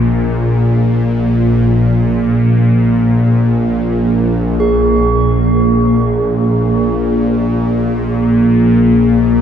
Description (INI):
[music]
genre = dark ambient drone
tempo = free time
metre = none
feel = none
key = unclear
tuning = A4 = 440 Hz
[part]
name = bowed-like drone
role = drone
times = 0.0-9.4 s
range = Bb1 to Bb2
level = -11 LUFS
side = equal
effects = built-in reverb, phaser
[part]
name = bronze singing bowl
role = texture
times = 0.0-9.4 s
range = Ab4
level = -21 LUFS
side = right 2 dB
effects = none
[sound]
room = wet huge ambient reverb, RT60 7.0 s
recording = in a vast, echoing space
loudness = -10 LUFS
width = side -8 dB against mid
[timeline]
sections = 0.0-4.6 A section; 4.6-9.4 B section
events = none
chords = 0.0 Absus2/Bb